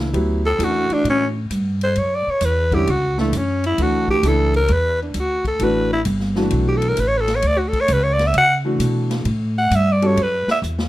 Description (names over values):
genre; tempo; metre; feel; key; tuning
modal jazz; 131 BPM; 4/4; swing 67% on 8ths; D major; A4 = 439 Hz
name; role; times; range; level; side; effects
warm grand piano; accompaniment; 0.0-10.2 s; D3 to A4; -22 LUFS; equal; none
upright bass; bass; 0.0-10.9 s; G1 to C#3; -20 LUFS; equal; none
swinging big-band drum kit; drums; 0.1-10.9 s; hi-hat, kick drum, ride cymbal, snare drum; -31 LUFS; left 1 dB; none
growling alto saxophone; melody; 0.5-10.6 s; A3 to F#5; -18 LUFS; equal; none
room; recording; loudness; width
light reverb; dark, warm production; -16 LUFS; side -15 dB against mid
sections
0.0-10.9 A section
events
alto saxophone solo 0.0-10.9; drum fill 10.6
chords
0.0 Dmaj9